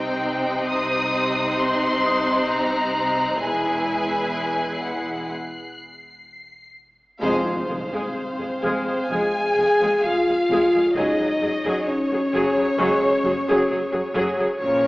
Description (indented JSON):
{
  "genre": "cinematic",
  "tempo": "65 BPM",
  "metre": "4/4",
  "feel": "straight",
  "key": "F phrygian from 7.2 s",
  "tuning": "A4 = 439 Hz",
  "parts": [
    { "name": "warm symphonic violin section", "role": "melody", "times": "0.0-14.9 s", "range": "Db5 to Eb6", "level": "-28 LUFS", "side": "left 1 dB", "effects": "none" },
    { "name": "rich chamber violin section", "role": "second line", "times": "0.0-14.9 s", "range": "Eb4 to Ab5", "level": "-25 LUFS", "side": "equal", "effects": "none" },
    { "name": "rich symphonic viola section", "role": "accompaniment", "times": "0.0-14.9 s", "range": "F3 to Bb4", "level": "-26 LUFS", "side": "equal", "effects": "none" },
    { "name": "dark symphonic cello section", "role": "bass", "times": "0.0-14.9 s", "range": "E2 to C3", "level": "-31 LUFS", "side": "right 1 dB", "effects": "none" },
    { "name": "dark symphonic double bass section", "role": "bass", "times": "0.0-14.9 s", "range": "E1 to C2", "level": "-38 LUFS", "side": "right 1 dB", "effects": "none" },
    { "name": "rich symphonic violin section", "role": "texture", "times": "0.0-6.7, 14.6-14.9 s", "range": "Db6 to C7", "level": "-35 LUFS", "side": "left 1 dB", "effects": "none" },
    { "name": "worn celesta", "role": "texture", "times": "0.0-14.9 s", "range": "F5 to F6", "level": "-31 LUFS", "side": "left 1 dB", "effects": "none" },
    { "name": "dark French horn section", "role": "sustained chords", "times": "7.2-14.9 s", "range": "C4 to Ab4", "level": "-23 LUFS", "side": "left 1 dB", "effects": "none" },
    { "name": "warm trombone section", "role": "sustained chords", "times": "7.2-14.9 s", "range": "Db3 to Bb3", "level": "-29 LUFS", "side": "right 1 dB", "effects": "none" },
    { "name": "impact", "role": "sound effects", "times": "7.2-11.0 s", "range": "none", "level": "-37 LUFS", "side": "equal", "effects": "none" }
  ],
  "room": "wet scoring stage reverb, RT60 2.1 s",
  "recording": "AM radio sound",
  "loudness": "-19 LUFS",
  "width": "side -20 dB against mid",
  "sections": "0.0-7.2 A section; 7.2-14.9 B section",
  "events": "break 5.3-7.2; band accent 7.2-8.2; impact 7.2-11.0",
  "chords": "0.0 Cm; 3.4 E; 5.3 N.C.; 7.2 Fm; 11.0 Gbsus2"
}